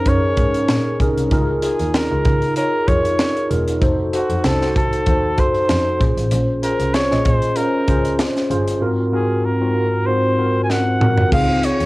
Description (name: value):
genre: polished 1980s jazz-funk pop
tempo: 96 BPM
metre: 4/4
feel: swing 54% on 16ths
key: Db major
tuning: A4 = 441 Hz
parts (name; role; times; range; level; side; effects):
- clear flugelhorn; melody; 0.0-11.9 s; Gb4 to Ab5; -22 LUFS; equal; cassette tape
- mellow tine electric piano; accompaniment; 0.0-11.9 s; Ab2 to Eb5; -19 LUFS; equal; medium stereo tremolo, analog chorus, cassette tape
- rich double bass; bass; 0.1-11.9 s; Fb1 to Db3; -22 LUFS; equal; none
- crisp fusion drum kit; drums; 0.1-11.9 s; crash cymbal, hi-hat, kick drum, snare drum, toms; -20 LUFS; equal; cassette tape
room: moderate booth ambience, RT60 0.2 s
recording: home recording on cassette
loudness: -15 LUFS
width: side -20 dB against mid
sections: 0.0-11.3 A section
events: drum fill 10.7-11.3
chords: 0.0 Gb69; 1.3 Db69; 3.8 F7b9; 6.0 Bbm7; 8.8 Ab13; 11.3 Dbmaj7